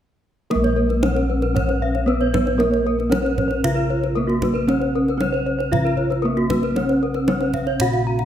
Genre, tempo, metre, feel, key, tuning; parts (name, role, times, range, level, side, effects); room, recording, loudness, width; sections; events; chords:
Balinese gamelan; 115 BPM; 4/4; straight; Bb pelog; A4 = 441 Hz
gamelan-type bronze metallophone; melody; 0.5-8.2 s; Bb3 to Gb4-40c; -22 LUFS; right 1 dB
gamelan-type bronze metallophone; arpeggios; 0.5-8.2 s; Bb4 to Bb5; -25 LUFS; left 6 dB
gamelan-type bossed gongs; bass; 0.5-8.2 s; Bb1 to Bb4; -22 LUFS; equal
kendang; percussion; 0.5-8.2 s; -26 LUFS; right 2 dB
gamelan-type bronze metallophone; arpeggios; 0.6-8.1 s; Gb4-40c to F5-45c; -27 LUFS; right 5 dB
moderate recital hall reverb, RT60 1.5 s; -18 LUFS; side -10 dB against mid
0.5-8.2 A section